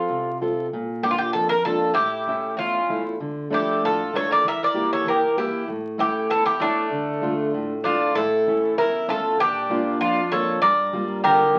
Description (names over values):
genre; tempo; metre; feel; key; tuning
greek folk, Greek bouzouki band; 97 BPM; 2/4; straight; unclear; A4 = 440 Hz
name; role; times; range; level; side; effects
Greek bouzouki; melody; 0.0-11.6 s; D4 to E5; -24 LUFS; equal; none
fingerpicked plugged-in steel-string acoustic guitar; accompaniment; 0.0-11.6 s; E2 to E5; -28 LUFS; equal; none
Greek bouzouki; second line; 1.9-11.6 s; A3 to Bb4; -29 LUFS; equal; none
room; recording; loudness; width
wet club reverb, RT60 0.6 s; very old 78 rpm record, vinyl crackle; -22 LUFS; mono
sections
0.0-8.2 A section; 8.2-11.6 B section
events
none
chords
0.0 F; 0.7 Bb; 2.0 A; 3.2 Dm; 4.5 Edim; 5.7 A; 6.9 Dm; 8.2 A; 9.4 Bb; 10.6 Gm7